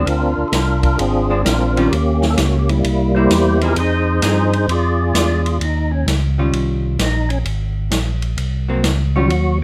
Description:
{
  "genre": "soul jazz organ trio",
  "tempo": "130 BPM",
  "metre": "4/4",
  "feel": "swing 66% on 8ths",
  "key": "unclear",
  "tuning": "A4 = 436 Hz",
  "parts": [
    { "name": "percussive tonewheel organ", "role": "melody", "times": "0.0-9.6 s", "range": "Gb3 to D5", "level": "-20 LUFS", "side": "equal", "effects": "slow rotary speaker, overdrive, chorus vibrato" },
    { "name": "vintage hollow-body jazz guitar", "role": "accompaniment", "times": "0.0-9.3 s", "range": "Eb3 to Ab4", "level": "-24 LUFS", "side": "equal", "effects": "none" },
    { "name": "tonewheel organ", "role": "bass", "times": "0.0-9.6 s", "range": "Ab1 to G2", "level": "-20 LUFS", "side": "equal", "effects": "overdrive, slow rotary speaker" },
    { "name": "open jazz drum kit", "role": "drums", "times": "0.1-9.4 s", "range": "hi-hat, kick drum, ride cymbal, snare drum", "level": "-25 LUFS", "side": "equal", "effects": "none" }
  ],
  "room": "light reverb",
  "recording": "none",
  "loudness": "-17 LUFS",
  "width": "mono",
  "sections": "0.0-5.6 A section; 5.6-9.6 B section",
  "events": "tonewheel organ solo 5.6-9.6",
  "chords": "0.0 Bb9; 1.9 Eb7; 2.8 C7; 3.8 Fm7; 4.7 E7b9; 5.6 Eb9; 7.5 Ab9"
}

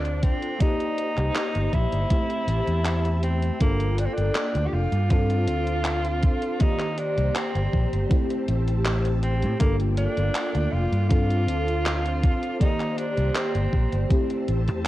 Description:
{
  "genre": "vaporwave",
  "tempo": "80 BPM",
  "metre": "4/4",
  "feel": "straight",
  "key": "G minor",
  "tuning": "A4 = 440 Hz",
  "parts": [
    { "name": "clear tenor saxophone", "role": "melody", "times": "0.0-14.1 s", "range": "Bb3 to G4", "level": "-30 LUFS", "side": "equal", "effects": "tape echo" },
    { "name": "FM electric piano with soft pad layer", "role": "accompaniment", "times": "0.0-14.9 s", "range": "Eb3 to D5", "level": "-29 LUFS", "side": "left 1 dB", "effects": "analog chorus, cassette tape" },
    { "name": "soft string machine", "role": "sustained chords", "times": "0.0-14.9 s", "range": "Bb3 to E6", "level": "-34 LUFS", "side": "equal", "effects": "ensemble chorus" },
    { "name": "fingered electric bass", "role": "bass", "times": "0.0-14.9 s", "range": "F1 to A2", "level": "-24 LUFS", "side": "equal", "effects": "none" },
    { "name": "gated 80s digital drum machine", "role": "drums", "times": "0.1-14.9 s", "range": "handclaps, hi-hat", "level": "-31 LUFS", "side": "equal", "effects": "gated reverb, overdrive, studio reverb" },
    { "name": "electronic kick drum", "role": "drums", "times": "0.2-14.3 s", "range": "none", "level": "-22 LUFS", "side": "equal", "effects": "overdrive, studio reverb" }
  ],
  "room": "little or no reverb",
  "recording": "worn, warbling old tape, cassette tape, warbly pitch drift",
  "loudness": "-21 LUFS",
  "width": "side -15 dB against mid",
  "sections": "0.0-3.6 A section; 3.6-14.9 B section",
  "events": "none",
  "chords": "0.0 Dm7; 0.6 Cm7; 2.1 Am7; 3.6 Gm7; 5.1 Dm7; 6.6 Cm7; 8.1 Am7; 9.6 Gm7; 11.1 Dm7; 12.6 Cm7; 14.1 Am7"
}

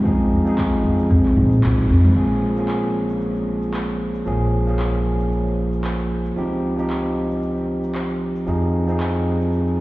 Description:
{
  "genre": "organic downtempo",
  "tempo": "114 BPM",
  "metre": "4/4",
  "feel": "swing 56% on 16ths",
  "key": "Bb dorian",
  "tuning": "A4 = 440 Hz",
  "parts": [
    { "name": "overdriven tine electric piano", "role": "accompaniment", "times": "0.0-9.8 s", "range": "F3 to Ab4", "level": "-22 LUFS", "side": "right 1 dB", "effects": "sidechain pumping, ping-pong delay" },
    { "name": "buzzing kalimba", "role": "arpeggios", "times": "0.0-2.1 s", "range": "Ab3 to F4", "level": "-22 LUFS", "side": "equal", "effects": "ping-pong delay" },
    { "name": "deep house drum kit", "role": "drums", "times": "0.1-9.8 s", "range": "cabasa, handclaps, toms", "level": "-34 LUFS", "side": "equal", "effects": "overdrive, studio reverb" },
    { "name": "electronic kick drum", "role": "drums", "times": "0.1-1.8 s", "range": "none", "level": "-23 LUFS", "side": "equal", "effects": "overdrive, studio reverb" },
    { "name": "udu", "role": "percussion", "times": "0.3-1.2 s", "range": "none", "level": "-21 LUFS", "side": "equal", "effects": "none" },
    { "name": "upright bass", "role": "bass", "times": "0.8-9.8 s", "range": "Bb1 to Bb2", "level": "-22 LUFS", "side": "equal", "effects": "none" }
  ],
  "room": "light reverb, studio ambience",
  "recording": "heard muffled through a wall, stone room reverb, EQ",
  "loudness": "-18 LUFS",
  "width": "side -18 dB against mid",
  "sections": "0.0-2.2 A section; 2.2-9.8 B section",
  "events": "band accent 1.6",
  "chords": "0.1 Fm7; 2.2 Bbm7; 6.4 Dbmaj9#11; 8.5 Fm7"
}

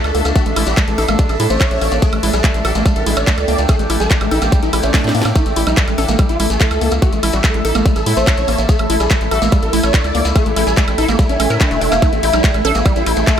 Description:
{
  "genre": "psychedelic trance",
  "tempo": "144 BPM",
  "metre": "4/4",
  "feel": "straight",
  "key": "unclear",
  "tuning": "A4 = 440 Hz",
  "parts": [
    { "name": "swarming rave lead", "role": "melody", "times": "0.0-13.4 s", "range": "A3 to D5", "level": "-21 LUFS", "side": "equal", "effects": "chorus, phaser, sidechain pumping, digital delay" },
    { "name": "overtone-sweeping drone", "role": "sustained chords", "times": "0.0-13.4 s", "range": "D4 to G5", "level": "-23 LUFS", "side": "equal", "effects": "chorus, built-in reverb, phaser, sidechain pumping" },
    { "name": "round analog bass", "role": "bass", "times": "0.0-13.4 s", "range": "E1 to A2", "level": "-19 LUFS", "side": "equal", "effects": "none" },
    { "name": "garage drum kit", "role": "drums", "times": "0.0-13.4 s", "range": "handclaps, hi-hat, snare drum, woodblock", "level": "-21 LUFS", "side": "equal", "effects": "none" },
    { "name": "granular cloud pad", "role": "texture", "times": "0.0-13.4 s", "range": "A4 to D6", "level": "-24 LUFS", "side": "right 1 dB", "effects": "built-in reverb, sidechain pumping" },
    { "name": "woody wave-folded pluck", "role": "riff", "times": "0.1-13.4 s", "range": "G3 to Bb4", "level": "-22 LUFS", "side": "moving between left 4 dB and right 4 dB", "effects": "chorus, auto-pan, sidechain pumping, digital delay" },
    { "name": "shekere", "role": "percussion", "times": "0.1-13.4 s", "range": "none", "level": "-30 LUFS", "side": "left 3 dB", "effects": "none" },
    { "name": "electronic kick drum", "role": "drums", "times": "0.4-13.4 s", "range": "none", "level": "-14 LUFS", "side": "equal", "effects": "none" },
    { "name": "swell", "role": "sound effects", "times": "4.7-5.4 s", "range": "none", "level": "-27 LUFS", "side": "equal", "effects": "none" }
  ],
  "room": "light reverb",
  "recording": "none",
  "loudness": "-12 LUFS",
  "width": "side -9 dB against mid",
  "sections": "0.0-13.4 A section",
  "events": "swell 4.7-5.4; drum fill 4.9-5.4",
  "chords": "0.0 A5"
}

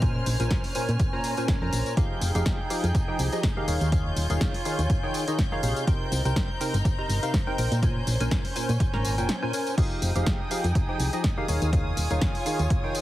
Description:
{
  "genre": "piano house",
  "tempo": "123 BPM",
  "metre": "4/4",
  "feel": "swing 55% on 16ths",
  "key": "F minor",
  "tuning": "A4 = 440 Hz",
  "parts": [
    { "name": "rich chamber violin section", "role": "sustained chords", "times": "0.0-13.0 s", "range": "Eb6 to G6", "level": "-40 LUFS", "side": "left 1 dB", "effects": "sidechain pumping" },
    { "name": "percussive organ stab", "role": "riff", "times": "0.0-13.0 s", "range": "Bb2 to Bb5", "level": "-30 LUFS", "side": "equal", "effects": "analog chorus, sidechain pumping, tape echo" },
    { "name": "solid FM bass", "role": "bass", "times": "0.0-12.7 s", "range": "Eb1 to Bb2", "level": "-25 LUFS", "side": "equal", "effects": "sidechain pumping" },
    { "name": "electronic kick drum", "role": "drums", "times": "0.0-12.8 s", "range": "none", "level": "-26 LUFS", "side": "equal", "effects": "none" },
    { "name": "punchy analog drum machine", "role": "drums", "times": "0.0-13.0 s", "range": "crash cymbal, hi-hat, snare drum, tambourine", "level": "-33 LUFS", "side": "equal", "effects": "none" },
    { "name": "muted chamber string section", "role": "texture", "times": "0.0-13.0 s", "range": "Db4 to Bb5", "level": "-34 LUFS", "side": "equal", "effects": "sidechain pumping" }
  ],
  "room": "light reverb, digital ambience",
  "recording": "heavily compressed radio sound, multiband compression",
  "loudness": "-23 LUFS",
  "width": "side -15 dB against mid",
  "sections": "0.0-13.0 A section",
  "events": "break 9.3-9.8",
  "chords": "0.0 Bbm9; 2.0 Fm9; 3.7 Eb9sus4; 5.9 Cm7; 7.8 Bbm9; 9.8 Fm9; 11.5 Eb9sus4"
}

